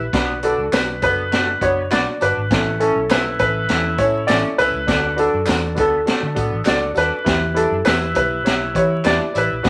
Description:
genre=uptempo 1960s-style soul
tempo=101 BPM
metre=4/4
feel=straight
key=E dorian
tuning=A4 = 440 Hz
part: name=warm baby grand piano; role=melody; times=0.0-9.7 s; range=A4 to D5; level=-22 LUFS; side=equal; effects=none
part: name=clear upright piano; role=accompaniment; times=0.0-9.7 s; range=C#4 to D5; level=-27 LUFS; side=equal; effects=none
part: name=electric guitar through a small old amp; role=riff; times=0.0-9.7 s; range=A3 to E4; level=-31 LUFS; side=equal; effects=vibrato effect
part: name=vintage muted fingered electric bass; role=bass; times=0.0-9.7 s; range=F#1 to E3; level=-28 LUFS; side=equal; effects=none
part: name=swinging big-band drum kit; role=drums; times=0.1-9.7 s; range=hi-hat, kick drum, snare drum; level=-24 LUFS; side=equal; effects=none
part: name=tambourine and handclaps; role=percussion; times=0.1-9.7 s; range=none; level=-36 LUFS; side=equal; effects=none
room=moderate studio reverb, RT60 0.5 s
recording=vinyl crackle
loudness=-18 LUFS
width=mono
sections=0.0-9.7 A section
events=none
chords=0.1 Bm; 2.5 A; 4.9 D; 7.3 Em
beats=| 0.13 0.72 1.31 1.91 | 2.50 3.10 3.69 4.29 | 4.88 5.48 6.07 6.67 | 7.26 7.86 8.45 9.05 | 9.64

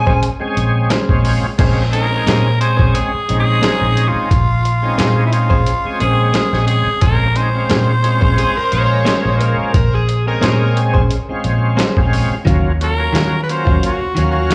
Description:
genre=straight-eighth soul blues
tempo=88 BPM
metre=4/4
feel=swing 53% on 16ths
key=Bb minor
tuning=A4 = 440 Hz
part: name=overdriven slide guitar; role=second line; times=0.0-0.2, 8.4-10.8 s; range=Ab4 to Ab5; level=-24 LUFS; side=equal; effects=slapback echo
part: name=bright tonewheel organ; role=accompaniment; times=0.0-14.5 s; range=Gb3 to F5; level=-24 LUFS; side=equal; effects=slow rotary speaker, overdrive, chorus vibrato, slapback echo
part: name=vintage muted fingered electric bass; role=bass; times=0.0-14.5 s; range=Bb1 to Eb3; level=-18 LUFS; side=equal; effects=none
part: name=direct-recorded clean electric guitar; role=stabs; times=0.1-14.5 s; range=Eb3 to C5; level=-25 LUFS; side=equal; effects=none
part: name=lo-fi sampler-style drum kit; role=drums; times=0.1-14.5 s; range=crash cymbal, hi-hat, kick drum, snare drum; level=-20 LUFS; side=equal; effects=none
part: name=raspy tenor saxophone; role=melody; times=1.9-14.5 s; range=E4 to C5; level=-21 LUFS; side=equal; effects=slapback echo
room=little or no reverb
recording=live gig heard through the venue's PA, club reverb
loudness=-15 LUFS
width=mono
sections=0.0-1.6 A section; 1.6-14.5 B section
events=electric slide guitar solo 0.0-1.6; break 1.3-1.6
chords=0.0 Bbm9; 12.5 Ebm9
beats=0.23 0.91 | 1.59 2.27 2.95 3.63 | 4.31 4.99 5.67 6.35 | 7.03 7.71 8.39 9.07 | 9.75 10.43 11.11 11.79 | 12.47 13.15 13.83 14.51

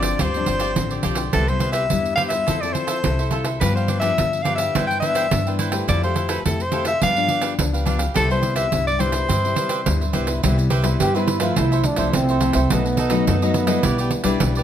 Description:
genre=samba and choro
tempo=106 BPM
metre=4/4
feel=straight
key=C major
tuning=A4 = 439 Hz
part: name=bright soprano saxophone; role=melody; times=0.0-10.1 s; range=A4 to G5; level=-22 LUFS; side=left 2 dB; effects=none
part: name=cavaquinho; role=accompaniment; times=0.0-14.6 s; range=D4 to G5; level=-28 LUFS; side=right 4 dB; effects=none
part: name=nylon-string guitar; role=accompaniment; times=0.0-14.6 s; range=F#2 to A4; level=-26 LUFS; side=left 7 dB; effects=none
part: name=upright bass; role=bass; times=0.0-14.6 s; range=G1 to G2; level=-23 LUFS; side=equal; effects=none
part: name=pandeiro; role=percussion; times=0.0-14.6 s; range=none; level=-24 LUFS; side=right 4 dB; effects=none
part: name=breathy trombone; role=second line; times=11.0-14.4 s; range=B3 to G4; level=-22 LUFS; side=right 3 dB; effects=none
room=moderate studio reverb, RT60 0.8 s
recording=none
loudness=-18 LUFS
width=side -10 dB against mid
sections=0.0-10.4 A section; 10.4-14.6 B section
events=trombone solo 10.4-14.6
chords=0.0 G7sus4; 1.3 Cmaj7; 2.5 Fmaj7; 3.6 G7; 4.7 Cmaj9/G; 5.9 Fmaj9; 7.0 G7; 8.2 Cmaj7; 11.6 Fmaj7/C; 12.7 B7; 13.8 Em7/B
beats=0.20 0.77 | 1.34 1.90 2.47 3.04 | 3.61 4.18 4.75 5.31 | 5.88 6.45 7.02 7.59 | 8.16 8.73 9.29 9.86 | 10.43 11.00 11.57 12.14 | 12.70 13.27 13.84 14.41

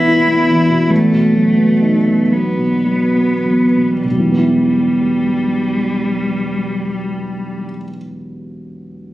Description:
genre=classical, romantic duo for cello and grand piano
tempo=32-52 BPM (dotted quarters)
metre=6/8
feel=rubato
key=E minor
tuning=A4 = 440 Hz
part: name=rich cello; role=melody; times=0.0-7.6 s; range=G3 to E4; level=-16 LUFS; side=equal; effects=none
part: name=dark baby grand piano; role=accompaniment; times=0.0-9.1 s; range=E1 to E4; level=-16 LUFS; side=equal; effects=none
room=wet recital hall reverb, RT60 1.4 s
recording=recorded on a phone in the room, studio reverb, compression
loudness=-12 LUFS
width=side -16 dB against mid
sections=0.0-4.0 A section; 4.0-9.1 B section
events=slowing down 0.0-4.0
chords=0.0 E5; 0.9 B7/E; 4.0 Em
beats=| 0.90 2.32 | 4.04 5.76 | 7.49

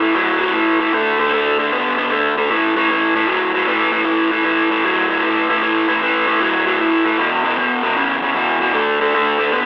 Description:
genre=blues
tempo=154 BPM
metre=4/4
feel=swing 66% on 8ths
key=A major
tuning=A4 = 439 Hz
part: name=overdriven electric guitar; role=solo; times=0.0-9.7 s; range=E2 to B3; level=-13 LUFS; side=equal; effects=slapback echo
room=light reverb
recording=live gig heard through the venue's PA, club reverb, telephone sound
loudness=-13 LUFS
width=side -23 dB against mid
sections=0.0-9.7 A section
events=none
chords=0.0 A5; 0.9 D5; 2.5 A5; 7.2 E5; 8.7 D5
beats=0.15 0.55 | 0.94 1.33 1.72 2.11 | 2.50 2.89 3.28 3.67 | 4.06 4.45 4.84 5.23 | 5.62 6.01 6.41 6.79 | 7.18 7.58 7.96 8.35 | 8.74 9.13 9.52

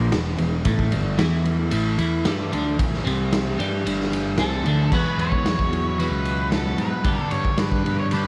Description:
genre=psychedelic rock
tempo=113 BPM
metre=4/4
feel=straight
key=unclear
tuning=A4 = 440 Hz
part: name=overdriven combo organ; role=sustained chords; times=0.0-8.3 s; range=E3 to D6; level=-38 LUFS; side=equal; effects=none
part: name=twelve-string electric guitar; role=riff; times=0.0-8.3 s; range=E2 to G4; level=-27 LUFS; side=equal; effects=phaser, double-tracked
part: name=fuzz picked electric bass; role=bass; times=0.0-8.3 s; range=E1 to G#2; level=-28 LUFS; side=equal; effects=overdrive
part: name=raw garage drum kit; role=drums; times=0.1-8.2 s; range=crash cymbal, kick drum, ride cymbal, snare drum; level=-27 LUFS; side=equal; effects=none
part: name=octave-fuzz lead guitar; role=melody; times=4.4-8.3 s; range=A4 to C#5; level=-30 LUFS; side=equal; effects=distortion, tape echo
room=light reverb, studio reverb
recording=none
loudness=-22 LUFS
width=mono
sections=0.0-4.9 A section; 4.9-8.3 B section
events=none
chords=0.0 E; 0.7 A5; 4.9 Eadd9; 7.0 G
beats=0.13 | 0.66 1.19 1.72 2.25 | 2.79 3.32 3.85 4.38 | 4.92 5.45 5.98 6.51 | 7.05 7.58 8.12

